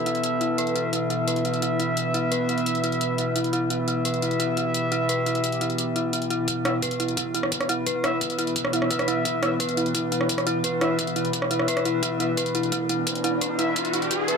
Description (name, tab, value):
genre	dark technical drum and bass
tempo	173 BPM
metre	4/4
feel	straight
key	E minor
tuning	A4 = 440 Hz
part	metallic inharmonic drone	sustained chords	0.0-14.4 s	B2 to B4	-27 LUFS	right 1 dB	chorus, built-in reverb, sidechain pumping
part	mellow brass ensemble	stabs	0.0-14.4 s	B3 to E5	-29 LUFS	left 2 dB	low-pass filter, ping-pong delay
part	dark detuned synth bell	arpeggios	0.1-14.4 s	E4 to B4	-27 LUFS	equal	chorus, sidechain pumping, low-pass filter, ping-pong delay
part	drum and bass drum kit	drums	0.1-14.4 s	hi-hat, rim click	-28 LUFS	equal	none
part	electronic kick drum	drums	6.5-14.2 s	none	-38 LUFS	right 1 dB	none
part	riser	sound effects	12.7-14.4 s	none	-30 LUFS	left 1 dB	none
room	moderate lush hall reverb, RT60 2.2 s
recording	high-pass filter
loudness	-22 LUFS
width	side -5 dB against mid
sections	0.0-6.5 A section; 6.5-14.4 B section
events	filter sweep on synth bell 0.0-6.5; filter sweep on brass ensemble 0.0-6.5; build-up 6.5-14.4; filter sweep on synth drone 6.5-14.4; drum fill 12.0-14.4; riser 12.7-14.4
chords	0.0 E5